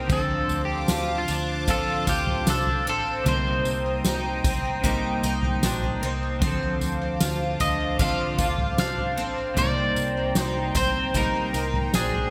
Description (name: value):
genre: dream pop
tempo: 76 BPM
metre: 4/4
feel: straight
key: unclear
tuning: A4 = 440 Hz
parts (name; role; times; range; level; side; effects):
- electric guitar at the edge of break-up; melody; 0.0-12.3 s; F4 to F5; -30 LUFS; equal; subtle chorus, delay
- clean electric guitar; accompaniment; 0.0-12.3 s; C3 to Bb4; -34 LUFS; equal; tremolo, subtle chorus
- phased analog pad; sustained chords; 0.0-12.3 s; C5 to Eb6; -34 LUFS; equal; phaser, chorus
- picked twelve-string acoustic guitar; arpeggios; 0.0-12.3 s; D3 to F4; -33 LUFS; equal; lush chorus, delay
- vintage muted fingered electric bass; bass; 0.0-12.3 s; A1 to D2; -34 LUFS; equal; none
- soft-mallet drum kit; drums; 0.1-12.3 s; kick drum, snare drum, tambourine, toms; -30 LUFS; equal; none
room: light reverb, small room ambience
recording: bright 1980s-style digital production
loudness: -25 LUFS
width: mono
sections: 0.0-12.3 A section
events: none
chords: 0.1 Dm7; 3.3 Cm7; 6.4 Dm7; 9.6 Cm7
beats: | 0.10 0.89 1.68 2.47 | 3.25 4.04 4.83 5.62 | 6.41 7.20 7.99 8.78 | 9.57 10.36 11.15 11.94